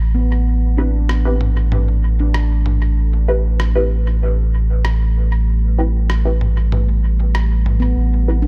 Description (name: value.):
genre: ambient dub.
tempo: 96 BPM.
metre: 4/4.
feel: straight.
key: A minor.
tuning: A4 = 440 Hz.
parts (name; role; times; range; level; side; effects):
deep dark ambient pad; sustained chords; 0.0-8.5 s; A3 to B4; -34 LUFS; equal; chorus, built-in reverb, vintage 12-bit sampler grit.
warm sub bass; bass; 0.0-8.5 s; A1; -17 LUFS; equal; tube saturation.
handpan; arpeggios; 0.1-3.8, 7.8-8.5 s; B3 to D4; -29 LUFS; equal; low-pass filter, tape echo.
filtered dub chord stab; stabs; 0.8-8.5 s; C4 to B4; -26 LUFS; equal; phaser, lush chorus, cassette tape, dub echo.
lo-fi sampler-style drum kit; drums; 1.1-7.8 s; rim click, toms; -30 LUFS; equal; studio reverb, dub echo.
room: little or no reverb.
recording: echo-heavy mix.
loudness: -17 LUFS.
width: mono.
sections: 0.0-8.5 A section.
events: filter sweep on handpan 0.0-8.5.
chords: 0.0 Am9.